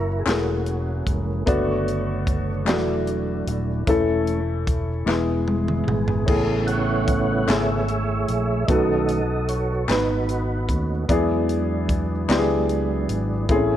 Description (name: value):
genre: slow gospel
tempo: 50 BPM (dotted quarters)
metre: 6/8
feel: straight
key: unclear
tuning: A4 = 441 Hz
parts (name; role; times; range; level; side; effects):
- dark upright piano; accompaniment; 0.0-13.8 s; A2 to B4; -24 LUFS; left 2 dB; none
- mellow tonewheel organ; sustained chords; 0.0-13.8 s; C#3 to F#5; -26 LUFS; right 3 dB; slow rotary speaker, chorus vibrato
- fingered electric bass; bass; 0.0-13.8 s; D#1 to E2; -26 LUFS; equal; none
- crisp fusion drum kit; drums; 0.3-13.7 s; crash cymbal, hi-hat, kick drum, snare drum, toms; -26 LUFS; equal; none
- group handclap; percussion; 0.3-12.7 s; none; -30 LUFS; left 5 dB; none
room: light reverb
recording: worn, warbling old tape, cassette tape, warbly pitch drift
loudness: -20 LUFS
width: side -11 dB against mid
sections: 0.0-13.8 A section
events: tonewheel organ solo 0.0-13.8; drum fill 5.1-6.3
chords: 0.0 F#7; 1.5 Bm7/F#; 2.7 E9sus4; 3.9 A/E; 5.1 E; 6.3 Amaj7; 8.7 B7; 11.1 E7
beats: 0.27 | 1.47 2.67 | 3.88 5.08 | 6.28 7.48 | 8.69 9.89 | 11.09 12.29 | 13.49